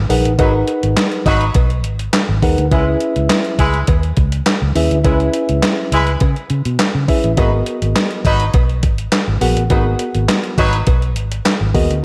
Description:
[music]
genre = early-eighties boogie funk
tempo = 103 BPM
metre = 4/4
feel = straight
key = G# minor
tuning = A4 = 440 Hz
[part]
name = vintage muted fingered electric bass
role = bass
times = 0.0-12.0 s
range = G#1 to C#3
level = -19 LUFS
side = equal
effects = none
[part]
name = tine electric piano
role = accompaniment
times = 0.1-12.0 s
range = A#3 to F#5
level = -21 LUFS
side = equal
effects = overdrive, slapback echo
[part]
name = crisp 8-bit digital drum machine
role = drums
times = 0.1-12.0 s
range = handclaps, hi-hat, kick drum, snare drum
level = -19 LUFS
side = equal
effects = overdrive
[part]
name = warm horn section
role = second line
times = 0.4-10.8 s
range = F#3 to B4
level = -23 LUFS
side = equal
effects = slapback echo
[part]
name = cowbell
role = percussion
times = 0.4-11.6 s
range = none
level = -30 LUFS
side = equal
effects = none
[sound]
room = moderate scoring stage reverb, RT60 1.5 s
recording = big arena sound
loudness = -16 LUFS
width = mono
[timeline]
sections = 0.0-12.0 A section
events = none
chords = 0.0 G#m9; 2.7 C#m7; 7.4 G#m9

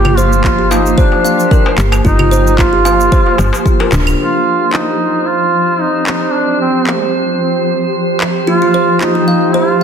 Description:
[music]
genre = organic downtempo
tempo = 112 BPM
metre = 4/4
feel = swing 54% on 16ths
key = unclear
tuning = A4 = 441 Hz
[part]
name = clear duduk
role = melody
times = 0.0-9.8 s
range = C4 to G4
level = -15 LUFS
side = right 1 dB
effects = ping-pong delay
[part]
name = granular cloud pad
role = sustained chords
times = 0.0-9.8 s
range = F3 to D5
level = -17 LUFS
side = equal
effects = built-in reverb, sidechain pumping
[part]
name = kalimba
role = arpeggios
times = 0.0-4.1, 8.5-9.8 s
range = D4 to F5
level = -17 LUFS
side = right 1 dB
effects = tape echo
[part]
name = woody FM bass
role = bass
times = 0.0-4.2 s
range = D1 to G1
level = -14 LUFS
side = equal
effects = sidechain pumping
[part]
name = darbuka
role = percussion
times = 0.0-4.0 s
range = none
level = -22 LUFS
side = left 4 dB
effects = none
[part]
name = drifting glass-harmonics texture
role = texture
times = 0.0-9.8 s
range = C5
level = -22 LUFS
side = right 6 dB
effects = chorus, built-in reverb
[part]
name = electronic claves, shaker and handclaps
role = drums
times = 0.1-9.1 s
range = none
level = -20 LUFS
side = right 1 dB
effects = none
[part]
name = electronic kick drum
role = drums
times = 0.4-3.8 s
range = none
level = -12 LUFS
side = equal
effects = none
[sound]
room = wet recital hall reverb, RT60 1.2 s, small room ambience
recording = dense, heavily limited modern master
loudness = -10 LUFS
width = side -7 dB against mid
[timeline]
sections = 0.0-4.2 A section; 4.2-9.8 B section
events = band accent 3.9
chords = 0.0 Gm7; 4.2 Fsus2

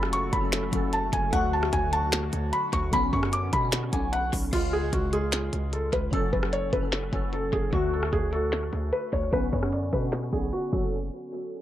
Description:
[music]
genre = hip hop, trap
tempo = 150 BPM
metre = 4/4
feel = half-time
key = F# harmonic minor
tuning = A4 = 440 Hz
[part]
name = felt-muted upright piano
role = melody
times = 0.0-10.9 s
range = E#4 to D6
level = -29 LUFS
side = equal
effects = tape echo
[part]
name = glassy digital keys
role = accompaniment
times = 0.0-10.9 s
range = C#3 to A4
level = -32 LUFS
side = left 2 dB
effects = chorus, tape echo
[part]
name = warm analog pad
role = sustained chords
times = 0.0-4.5 s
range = C#3 to F#4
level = -38 LUFS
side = right 2 dB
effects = chorus
[part]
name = hard-hitting 808-style bass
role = bass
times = 0.0-11.1 s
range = F#1 to B2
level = -30 LUFS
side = equal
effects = none
[part]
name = minimal click drum kit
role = drums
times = 0.0-10.8 s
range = crash cymbal, finger snaps, hi-hat, kick drum, rim click, snare drum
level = -30 LUFS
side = equal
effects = tape echo
[sound]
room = light reverb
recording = echo-heavy mix, low-pass filter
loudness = -24 LUFS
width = side -12 dB against mid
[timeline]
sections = 0.0-4.5 A section; 4.5-10.9 B section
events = filter sweep 4.5-10.9; drums muted 10.5-10.9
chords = 0.0 F#m; 1.3 D; 2.9 Bmadd9; 4.5 C#; 6.1 F#m; 7.7 D; 9.3 Bmadd9; 10.7 F#m; 10.9 N.C.

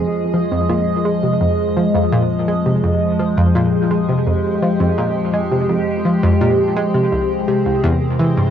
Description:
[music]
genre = ambient, sequencer-driven space music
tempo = 84 BPM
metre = 4/4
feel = straight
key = F minor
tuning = A4 = 440 Hz
[part]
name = evolving wavetable pad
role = sustained chords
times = 0.0-8.5 s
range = C3 to Eb5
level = -17 LUFS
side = equal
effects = chorus, built-in reverb, phaser, cassette tape, plate reverb
[part]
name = analog pluck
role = riff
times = 0.0-8.4 s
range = C2 to Ab3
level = -18 LUFS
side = equal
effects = chorus, cassette tape, tape echo
[part]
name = analog drone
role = bass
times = 0.2-8.5 s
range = C2 to F2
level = -35 LUFS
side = equal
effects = none
[part]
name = bubbling stepped-filter texture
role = texture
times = 0.1-8.5 s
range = C4 to C5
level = -34 LUFS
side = left 1 dB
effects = chorus, built-in reverb, cassette tape, plate reverb
[sound]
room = wet booth ambience, RT60 0.2 s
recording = home recording on cassette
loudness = -14 LUFS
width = side -9 dB against mid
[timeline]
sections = 0.0-8.5 A section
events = none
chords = 0.0 Fm7; 7.1 C7

